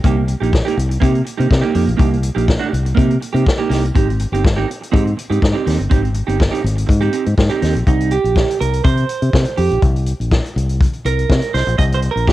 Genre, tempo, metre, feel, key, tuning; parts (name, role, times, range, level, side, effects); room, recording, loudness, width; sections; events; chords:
disco; 123 BPM; 4/4; straight; C minor; A4 = 440 Hz
clean electric guitar; accompaniment; 0.0-12.3 s; Bb3 to Eb5; -19 LUFS; right 6 dB; cassette tape
fingered electric bass; bass; 0.0-12.3 s; G1 to C3; -17 LUFS; left 1 dB
vintage drum kit; drums; 0.0-12.3 s; hi-hat, kick drum, snare drum; -17 LUFS; left 1 dB; cassette tape
small room ambience; home recording on cassette; -14 LUFS; side -15 dB against mid
0.0-7.9 A section; 7.9-12.3 B section
clean electric guitar solo 7.9-12.3
0.0 Cm7; 4.0 Abmaj7; 7.9 C5